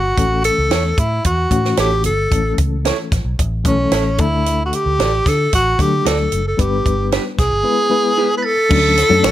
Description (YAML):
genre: uptempo 1960s-style soul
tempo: 112 BPM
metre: 4/4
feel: straight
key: A mixolydian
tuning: A4 = 440 Hz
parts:
  - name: breathy tenor saxophone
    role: melody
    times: 0.0-9.3 s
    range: C#4 to B4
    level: -17 LUFS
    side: equal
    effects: none
  - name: vintage muted fingered electric bass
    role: bass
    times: 0.0-9.3 s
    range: F#1 to D3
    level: -20 LUFS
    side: equal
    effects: none
  - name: reed electric piano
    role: accompaniment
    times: 0.2-9.3 s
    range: D3 to B4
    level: -21 LUFS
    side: left 5 dB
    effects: fast tremolo
  - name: compact cocktail drum kit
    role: drums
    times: 0.2-9.3 s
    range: crash cymbal, hi-hat, kick drum, snare drum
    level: -19 LUFS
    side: right 1 dB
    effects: none
  - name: electric guitar through a small old amp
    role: stabs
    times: 0.7-9.3 s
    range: D4 to D5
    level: -24 LUFS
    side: right 8 dB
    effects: none
  - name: glockenspiel with hard plastic mallets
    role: second line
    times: 8.4-9.3 s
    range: A6 to B6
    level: -25 LUFS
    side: right 5 dB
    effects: slapback echo
  - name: finger snap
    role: percussion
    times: 9.2-9.3 s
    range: none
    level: -23 LUFS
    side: left 5 dB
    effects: none
room: small room ambience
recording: none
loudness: -14 LUFS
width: side -13 dB against mid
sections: 0.0-8.7 A section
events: none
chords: 0.2 A; 4.2 D; 6.6 G; 7.6 E; 8.7 Dmaj7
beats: | 0.17 0.71 1.25 1.78 | 2.32 2.85 3.39 3.92 | 4.45 4.99 5.52 6.05 | 6.58 7.12 7.65 8.18 | 8.71 9.23